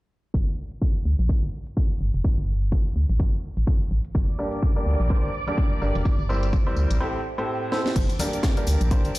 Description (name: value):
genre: piano house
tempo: 126 BPM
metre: 4/4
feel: swing 57% on 16ths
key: G dorian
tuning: A4 = 437 Hz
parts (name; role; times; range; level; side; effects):
- organ-like FM bass; bass; 0.3-9.1 s; F1 to D2; -23 LUFS; equal; sidechain pumping
- electronic kick drum; drums; 0.3-9.0 s; none; -22 LUFS; equal; none
- house drum kit; drums; 0.3-9.2 s; cabasa, crash cymbal, hi-hat, snare drum; -30 LUFS; equal; none
- string machine, violins; sustained chords; 4.1-9.2 s; D5 to D6; -36 LUFS; right 2 dB; ensemble chorus, sidechain pumping
- tambourine and congas; percussion; 4.2-9.2 s; none; -36 LUFS; left 2 dB; none
- bright upright piano; riff; 4.4-9.1 s; G2 to D5; -27 LUFS; equal; sidechain pumping, dub echo
room: little or no reverb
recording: played on a big sound system in a bare room, stone room reverb, low-pass filter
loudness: -21 LUFS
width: side -19 dB against mid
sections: 0.3-8.0 A section; 8.0-9.2 B section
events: filter sweep on FM bass 0.3-8.0; filter sweep 0.3-8.0; break 7.0-8.0; drum fill 7.7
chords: 0.3 Gm; 2.2 N.C.; 4.1 Gm; 6.1 C7/G; 7.0 Am7; 8.0 Gm